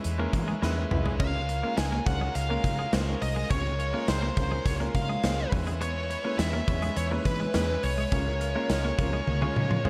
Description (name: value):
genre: 1980s-style pop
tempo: 104 BPM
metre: 4/4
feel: straight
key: unclear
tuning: A4 = 440 Hz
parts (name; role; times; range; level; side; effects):
- clear baby grand piano; accompaniment; 0.0-9.9 s; G#3 to C#5; -37 LUFS; equal; none
- heavy high-gain guitar; accompaniment; 0.0-9.9 s; Db3 to E4; -46 LUFS; equal; none
- vintage muted fingered electric bass; bass; 0.0-9.9 s; C2 to E3; -33 LUFS; equal; none
- gated 80s drum kit; drums; 0.0-9.9 s; crash cymbal, hi-hat, kick drum, snare drum, tambourine, toms; -32 LUFS; equal; none
- twelve-string electric guitar; riff; 0.2-9.9 s; F3 to Db4; -39 LUFS; equal; subtle chorus
- mellow synth brass; stabs; 0.9-1.2, 9.0-9.1 s; F3 to B4; -42 LUFS; equal; chorus
- high-gain lead guitar; melody; 1.2-9.9 s; B4 to Ab5; -35 LUFS; equal; distortion
- string machine, violins; sustained chords; 1.2-9.9 s; Bb4 to C6; -44 LUFS; equal; none
room: moderate lush hall reverb, RT60 2.1 s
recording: dark, warm production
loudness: -28 LUFS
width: mono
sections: 0.0-9.9 A section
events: band accent 0.0-1.2, 8.1-9.9; drum fill 0.6-1.2, 9.3-9.9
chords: 0.0 E6; 1.2 Db6; 5.5 E6; 8.1 Db6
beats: 0.04 0.62 | 1.20 1.77 2.35 2.93 | 3.51 4.08 4.66 5.24 | 5.81 6.39 6.97 7.54 | 8.12 8.70 9.28 9.85